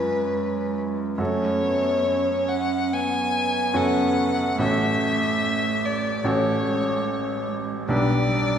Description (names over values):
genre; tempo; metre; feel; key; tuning
classical, slow romantic movement for piano trio; 72 BPM; 4/4; rubato; F# minor; A4 = 436 Hz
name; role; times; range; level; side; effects
clear violin; melody; 0.0-8.6 s; B4 to G#5; -25 LUFS; left 3 dB; none
warm cello; second line; 0.0-8.6 s; G3 to C#4; -28 LUFS; right 7 dB; none
bright grand piano; accompaniment; 0.0-8.6 s; A1 to B4; -25 LUFS; equal; none
room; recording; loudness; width
wet concert hall reverb, RT60 2.4 s; heard from further back in the room; -21 LUFS; side -8 dB against mid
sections
0.0-8.6 A section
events
none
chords
0.0 C#7/F#; 1.2 F#m; 4.6 F#m/A; 7.9 G/B